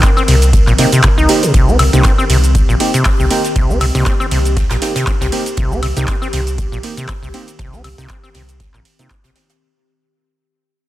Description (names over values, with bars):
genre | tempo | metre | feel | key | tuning
acid house | 119 BPM | 4/4 | swing 55% on 16ths | C minor | A4 = 440 Hz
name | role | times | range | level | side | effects
warbly tape-like pad | sustained chords | 0.0-9.6 s | Eb3 to Bb4 | -24 LUFS | left 3 dB | chorus, built-in reverb, sidechain pumping
acid bass, saw | riff | 0.0-9.3 s | Bb2 to Eb4 | -17 LUFS | equal | sidechain pumping, tape echo
electro analog drum machine | drums | 0.0-9.6 s | cabasa, handclaps, hi-hat, ride cymbal, woodblock | -20 LUFS | equal | none
electronic kick drum | drums | 0.0-9.2 s | none | -15 LUFS | equal | none
jazz brush drum kit | drums | 0.0-9.6 s | hi-hat, snare drum | -29 LUFS | right 4 dB | none
warm sub bass | bass | 0.3-9.3 s | G1 to C2 | -15 LUFS | equal | sidechain pumping
deep mellow chord stab | stabs | 0.8-9.1 s | Bb3 to G4 | -21 LUFS | right 3 dB | chorus, tape echo
room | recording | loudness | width
light reverb | dense, heavily limited modern master | -11 LUFS | side -15 dB against mid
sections
0.0-9.6 A section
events
drop 0.0-9.6; fade-out 1.5-9.6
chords
0.0 Cm7